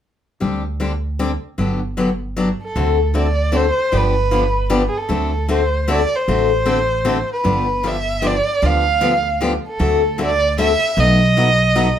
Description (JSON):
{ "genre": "acoustic string swing (jazz manouche)", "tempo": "153 BPM", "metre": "3/4", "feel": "swing 62% on 8ths", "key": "D mixolydian", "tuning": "A4 = 440 Hz", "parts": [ { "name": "picked steel-string acoustic guitar", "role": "accompaniment", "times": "0.4-11.9 s", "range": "B2 to A4", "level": "-20 LUFS", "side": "left 4 dB", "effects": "none" }, { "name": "upright bass", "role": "bass", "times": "0.4-11.9 s", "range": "G1 to D2", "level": "-20 LUFS", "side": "right 1 dB", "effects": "none" }, { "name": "warm violin", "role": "melody", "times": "2.6-12.0 s", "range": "G#4 to F5", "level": "-18 LUFS", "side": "right 2 dB", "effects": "none" } ], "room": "moderate studio reverb, RT60 0.5 s", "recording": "heard from further back in the room", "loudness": "-15 LUFS", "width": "side -10 dB against mid", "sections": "0.4-2.8 A section; 2.8-12.0 B section", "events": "none", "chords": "0.4 D7sus4; 1.6 Gmaj7; 2.8 D7; 3.9 G7; 5.1 D7; 7.4 G7; 9.8 D7; 11.0 B7", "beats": "| 0.41 0.80 1.19 | 1.58 1.97 2.37 | 2.76 3.15 3.54 | 3.93 4.32 4.71 | 5.10 5.49 5.88 | 6.27 6.67 7.06 | 7.45 7.84 8.23 | 8.62 9.01 9.40 | 9.80 10.19 10.58 | 10.97 11.36 11.75" }